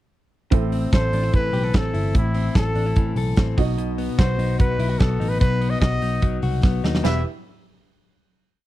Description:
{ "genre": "jangly indie pop", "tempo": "147 BPM", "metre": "4/4", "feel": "straight", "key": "unclear", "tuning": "A4 = 440 Hz", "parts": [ { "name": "warm upright piano", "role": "accompaniment", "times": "0.5-7.2 s", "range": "C4 to D#5", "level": "-31 LUFS", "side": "right 14 dB", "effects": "none" }, { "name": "direct-recorded clean electric guitar", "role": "arpeggios", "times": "0.5-7.2 s", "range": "E2 to A4", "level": "-27 LUFS", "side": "left 6 dB", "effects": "warbly pitch drift, slapback echo" }, { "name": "vintage muted picked electric bass", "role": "bass", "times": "0.5-7.2 s", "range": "E1 to D#2", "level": "-23 LUFS", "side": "equal", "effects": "none" }, { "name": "big rock drum kit", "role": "drums", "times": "0.5-7.1 s", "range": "hi-hat, kick drum, snare drum, splash cymbal", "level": "-20 LUFS", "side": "equal", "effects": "none" }, { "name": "warm trumpet", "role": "melody", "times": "0.9-7.2 s", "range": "E4 to E5", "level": "-26 LUFS", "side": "equal", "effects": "slapback echo" } ], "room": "small room ambience", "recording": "dry, close 1970s-style studio recording", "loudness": "-18 LUFS", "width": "side -15 dB against mid", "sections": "0.5-7.0 pre-chorus; 7.0-8.7 final chord", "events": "drum fill 6.6-7.0", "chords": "0.5 Am; 3.6 B; 7.0 Em" }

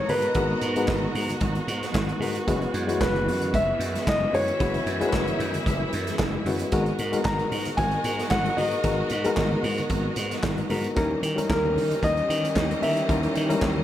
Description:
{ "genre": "disco", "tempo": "113 BPM", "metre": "4/4", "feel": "straight", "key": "G# minor", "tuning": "A4 = 437 Hz", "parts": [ { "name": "warm grand piano", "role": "melody", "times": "0.0-13.8 s", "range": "A#4 to A#5", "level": "-27 LUFS", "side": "left 1 dB", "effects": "none" }, { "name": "clear symphonic string section", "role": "second line", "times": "0.0-13.8 s", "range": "A#3 to A#5", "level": "-35 LUFS", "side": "left 1 dB", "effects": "none" }, { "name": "reed electric piano", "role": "accompaniment", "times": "0.0-13.8 s", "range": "E3 to B4", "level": "-29 LUFS", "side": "left 3 dB", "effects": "fast tremolo" }, { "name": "clear studio string section", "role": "sustained chords", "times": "0.0-13.8 s", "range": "B2 to A#4", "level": "-32 LUFS", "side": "right 2 dB", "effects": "none" }, { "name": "slap bass", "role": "bass", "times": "0.1-13.8 s", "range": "F#1 to D#3", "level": "-29 LUFS", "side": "right 1 dB", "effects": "none" }, { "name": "modern studio drum kit", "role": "drums", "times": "0.1-13.8 s", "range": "handclaps, hi-hat, kick drum, snare drum", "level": "-30 LUFS", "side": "right 1 dB", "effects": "none" }, { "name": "congas", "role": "percussion", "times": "0.1-13.8 s", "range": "none", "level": "-35 LUFS", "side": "left 3 dB", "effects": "none" } ], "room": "moderate recital hall reverb, RT60 1.6 s", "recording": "none", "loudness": "-22 LUFS", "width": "side -12 dB against mid", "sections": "0.0-13.8 A section", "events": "none", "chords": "0.0 G#m9; 2.5 F#9sus4; 6.7 G#m9; 11.0 D#7b9" }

